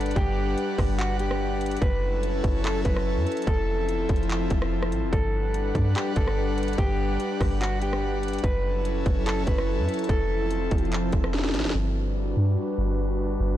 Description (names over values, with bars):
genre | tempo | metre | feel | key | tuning
hip hop, atmospheric cloud-rap | 145 BPM | 4/4 | half-time | unclear | A4 = 440 Hz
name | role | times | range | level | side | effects
mellow electric guitar | melody | 0.0-10.9 s | F#4 to B4 | -30 LUFS | equal | warbly pitch drift, ping-pong delay
airy breathy pad | sustained chords | 0.0-13.6 s | F3 to F#5 | -29 LUFS | left 1 dB | chorus, sidechain pumping, low-pass filter
soft 808-style bass | bass | 0.0-13.6 s | F1 to G2 | -27 LUFS | equal | none
trap drum kit | drums | 0.0-11.8 s | handclaps, hi-hat, kick drum, rim click, snare drum | -27 LUFS | equal | vintage 12-bit sampler grit
room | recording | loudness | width
little or no reverb | blown-out, overdriven recording, overdrive | -23 LUFS | side -12 dB against mid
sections
0.0-11.7 A section; 11.7-13.6 B section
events
drum fill 11.3-11.7; filter sweep on analog synth pad 11.7-13.6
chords
0.0 Gmaj7; 1.8 F#m7; 3.5 Fmaj7; 5.1 Gmaj7; 8.4 F#m7; 10.1 Fmaj7; 11.7 Gmaj7